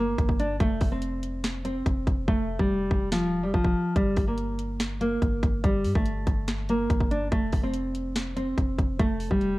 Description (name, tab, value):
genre	hip hop, trap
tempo	143 BPM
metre	4/4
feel	half-time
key	unclear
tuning	A4 = 440 Hz
part	nylon-string guitar	melody	0.0-9.6 s	F3 to D4	-27 LUFS	equal	low-pass filter
part	clean 808-style bass	bass	0.0-9.6 s	Eb1 to G2	-31 LUFS	equal	none
part	trap drum kit	drums	0.2-9.5 s	hi-hat, kick drum, snare drum	-26 LUFS	equal	none
room	light reverb, digital ambience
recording	cassette tape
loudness	-24 LUFS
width	side -19 dB against mid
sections	0.0-9.6 A section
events	hi-hats muted 2.3-4.0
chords	0.0 Gm; 0.6 F5; 4.0 Gm; 7.3 F5